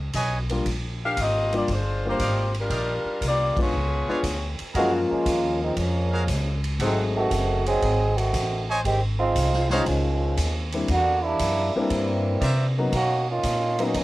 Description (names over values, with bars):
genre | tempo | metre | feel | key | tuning
jazz, big band swing | 117 BPM | 4/4 | swing 69% on 8ths | unclear | A4 = 442 Hz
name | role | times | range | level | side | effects
upright bass | bass | 0.0-14.0 s | Gb1 to C3 | -26 LUFS | equal | none
bright trumpet section | stabs | 0.1-12.7 s | Gb4 to Ab5 | -28 LUFS | right 1 dB | cassette tape
swinging big-band drum kit | drums | 0.1-14.0 s | hi-hat, kick drum, ride cymbal, snare drum | -32 LUFS | equal | cassette tape
warm grand piano | accompaniment | 0.5-14.0 s | F3 to C5 | -27 LUFS | left 2 dB | cassette tape
warm saxophone section | melody | 1.0-4.6 s | G3 to F5 | -25 LUFS | left 1 dB | cassette tape
muted trombone section | second line | 4.7-14.0 s | Db3 to Ab4 | -25 LUFS | right 2 dB | cassette tape
room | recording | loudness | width
light reverb | home recording on cassette | -21 LUFS | side -17 dB against mid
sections
0.0-4.8 A section; 4.8-14.0 B section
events
band accent 3.5; trombone section solo 4.8-14.0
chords
0.0 Db9; 0.7 Ebmaj9; 3.7 Db7b9; 4.8 Gbmaj9; 6.8 Ab7b9; 8.8 Dbmaj9; 10.9 C9; 12.9 Bmaj9